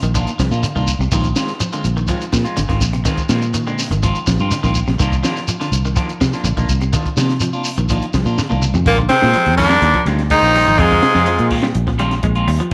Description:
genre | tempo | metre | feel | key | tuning
afrobeat | 124 BPM | 4/4 | straight | Bb mixolydian | A4 = 441 Hz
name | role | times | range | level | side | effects
clean electric guitar | arpeggios | 0.0-12.7 s | C3 to Ab3 | -27 LUFS | equal | lush chorus
fingered electric bass | bass | 0.0-12.7 s | Ab1 to C3 | -20 LUFS | equal | none
compact cocktail drum kit | drums | 0.0-12.7 s | hi-hat, kick drum, snare drum, toms | -25 LUFS | equal | none
shekere | percussion | 0.0-8.9 s | none | -27 LUFS | equal | none
electric guitar at the edge of break-up | stabs | 0.1-12.5 s | Eb3 to F4 | -27 LUFS | equal | phaser, slapback echo
raspy tenor saxophone | melody | 8.9-11.5 s | Ab3 to Eb4 | -16 LUFS | equal | slapback echo
raspy baritone saxophone | second line | 8.9-11.5 s | Ab2 to Eb3 | -25 LUFS | equal | none
warm trumpet | second line | 8.9-11.5 s | F4 to C5 | -28 LUFS | equal | none
room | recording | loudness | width
moderate plate reverb, RT60 1.2 s, small room reverb | none | -16 LUFS | mono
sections
0.0-8.9 A section; 8.9-12.7 B section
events
drum fill 8.4-8.9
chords
0.0 Cm11; 1.1 Bb9sus4; 5.0 Cm11; 8.9 Bb9sus4

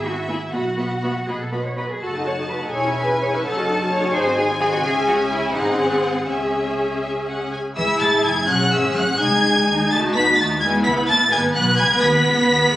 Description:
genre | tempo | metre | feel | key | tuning
quick classical-period movement for string orchestra | 84 BPM (dotted quarters) | 6/8 | rubato | C# minor | A4 = 435 Hz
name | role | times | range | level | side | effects
clear symphonic violin section | melody | 0.0-12.8 s | E5 to B6 | -21 LUFS | left 1 dB | none
warm symphonic cello section | bass | 0.0-12.8 s | E3 to C#5 | -24 LUFS | equal | none
warm symphonic double bass section | bass | 0.0-12.8 s | E1 to E2 | -28 LUFS | right 1 dB | none
rich studio violin section | second line | 0.1-12.8 s | B#4 to C#6 | -27 LUFS | left 1 dB | none
warm symphonic viola section | accompaniment | 0.1-12.8 s | G#3 to B4 | -22 LUFS | equal | none
room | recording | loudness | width
moderate scoring stage reverb, RT60 1.9 s | recorded on a phone in the room, studio reverb | -17 LUFS | side -14 dB against mid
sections
0.0-7.8 A section; 7.8-12.8 B section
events
none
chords
0.0 E/G#; 0.5 Bsus4; 1.3 B; 2.0 D#dim/F#; 2.7 C#m/E; 3.4 D#m7b5/F#; 4.1 G#7; 4.8 C#m; 5.6 G#7; 6.3 C#m; 9.2 G#/B#; 9.9 C#m; 10.6 E; 12.0 B

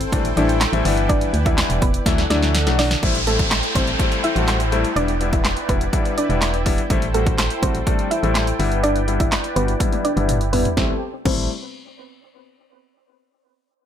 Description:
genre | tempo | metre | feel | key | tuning
dance-pop | 124 BPM | 4/4 | straight | A dorian | A4 = 442 Hz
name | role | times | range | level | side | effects
soft round pluck | melody | 0.0-11.5 s | A3 to E5 | -25 LUFS | right 1 dB | chorus, sidechain pumping, low-pass filter, ping-pong delay
soft supersaw | sustained chords | 0.0-11.0 s | E4 to G5 | -27 LUFS | right 2 dB | sidechain pumping, low-pass filter
organ-like FM bass | bass | 0.0-11.5 s | E1 to D2 | -22 LUFS | equal | sidechain pumping
punchy analog drum machine | drums | 0.0-11.4 s | crash cymbal, handclaps, hi-hat, kick drum, snare drum, toms | -21 LUFS | right 1 dB | none
clear baby grand piano | accompaniment | 0.1-11.5 s | E3 to F#4 | -24 LUFS | left 6 dB | sidechain pumping, low-pass filter
downlifter | sound effects | 3.0-6.9 s | none | -26 LUFS | equal | none
room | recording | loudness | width
little or no reverb | none | -17 LUFS | side -9 dB against mid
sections
0.0-3.0 A section; 3.0-10.8 B section; 10.8-12.7 C section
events
drop 0.0-3.0; drum fill 2.1-3.0, 9.8-10.8; filter sweep 3.0-10.8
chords
0.0 Am7; 0.9 G6; 2.1 Dadd9; 3.0 Am7; 5.0 Em7; 6.9 Am7; 8.6 G6; 10.8 Am7

